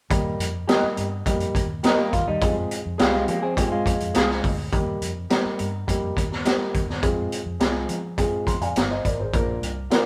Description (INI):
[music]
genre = uptempo 1960s-style soul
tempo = 104 BPM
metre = 4/4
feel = straight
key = Eb major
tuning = A4 = 440 Hz
[part]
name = dark upright piano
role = accompaniment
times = 0.1-10.1 s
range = G3 to C6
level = -29 LUFS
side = equal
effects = none
[part]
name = vintage muted fingered electric bass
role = bass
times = 0.1-9.9 s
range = G1 to F3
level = -33 LUFS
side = equal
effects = none
[part]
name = raw garage drum kit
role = drums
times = 0.1-10.0 s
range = hi-hat, kick drum, snare drum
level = -26 LUFS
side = equal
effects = none
[part]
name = electric guitar through a small old amp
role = stabs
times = 0.7-4.3, 9.9-10.0 s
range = F4 to F5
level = -28 LUFS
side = equal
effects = vibrato effect
[part]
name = semi-hollow electric guitar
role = riff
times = 2.0-4.5 s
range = G3 to Ab4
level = -28 LUFS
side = equal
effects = none
[sound]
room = moderate stone room reverb, RT60 1.1 s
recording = band playing live in one room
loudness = -24 LUFS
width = mono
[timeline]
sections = 0.1-4.7 A section; 4.7-10.1 B section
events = upright piano fill 8.2-9.3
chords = 0.1 Eb; 2.4 Fm; 4.7 Eb; 7.0 Fm; 9.3 Bb